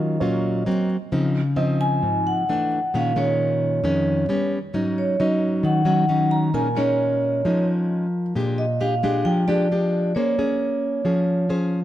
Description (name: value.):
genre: bossa nova.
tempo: 133 BPM.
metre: 4/4.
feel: straight.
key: Bb minor.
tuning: A4 = 443 Hz.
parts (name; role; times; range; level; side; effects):
vibraphone with medium mallets; melody; 0.0-11.5 s; Db5 to Bb5; -24 LUFS; right 1 dB; none.
nylon-string guitar; accompaniment; 0.0-11.8 s; F2 to C5; -21 LUFS; left 1 dB; none.
warm concert grand piano; accompaniment; 0.0-2.7, 6.5-8.4 s; Bb4 to Eb5; -33 LUFS; right 5 dB; none.
room: moderate echo chamber reverb, RT60 2.0 s.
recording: none.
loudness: -19 LUFS.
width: side -13 dB against mid.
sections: 0.0-11.8 A section.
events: none.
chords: 0.0 Ebm9; 0.7 Gb6; 1.1 Dbmaj9; 2.5 E9sus4; 2.9 Bbm7; 4.3 G; 4.7 Ab7sus4; 6.5 Bbm7; 8.4 Bb6; 10.2 Bbm9.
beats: 0.21 0.67 | 1.12 1.57 2.03 2.48 | 2.93 3.38 3.84 4.29 | 4.74 5.19 5.64 6.09 | 6.55 7.00 7.45 7.90 | 8.35 8.80 9.25 9.70 | 10.15 10.61 11.06 11.51.